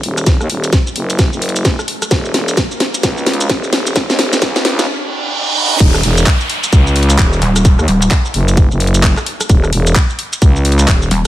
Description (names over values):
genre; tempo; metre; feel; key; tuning
bass house; 130 BPM; 4/4; swing 61% on 16ths; Eb phrygian; A4 = 440 Hz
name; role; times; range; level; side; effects
growling FM bass; bass; 0.0-11.1 s; Eb1 to Eb2; -15 LUFS; equal; overdrive, sidechain pumping, high-pass filter
garage drum kit; drums; 0.0-11.2 s; crash cymbal, handclaps, hi-hat, rim click, shaker, snare drum; -16 LUFS; equal; studio reverb
riser, reverse cymbal and downlifter; sound effects; 1.7-9.5 s; none; -21 LUFS; right 2 dB; none
electronic kick drum; drums; 0.3-11.0 s; none; -12 LUFS; equal; studio reverb
pulsing pluck wobble bass; bass; 7.4-8.1, 11.1-11.3 s; Eb1; -12 LUFS; equal; chorus, overdrive, sidechain pumping
room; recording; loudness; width
light reverb; high-pass filter; -11 LUFS; side -14 dB against mid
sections
0.0-5.8 A section; 5.8-11.3 B section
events
build-up 0.0-5.8; drum fill 0.0-4.9; filter sweep 0.0-5.8; riser 1.7-5.8; reverse cymbal 4.9-5.8; stop 4.9-5.8; drop 5.8-11.3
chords
0.0 Ebm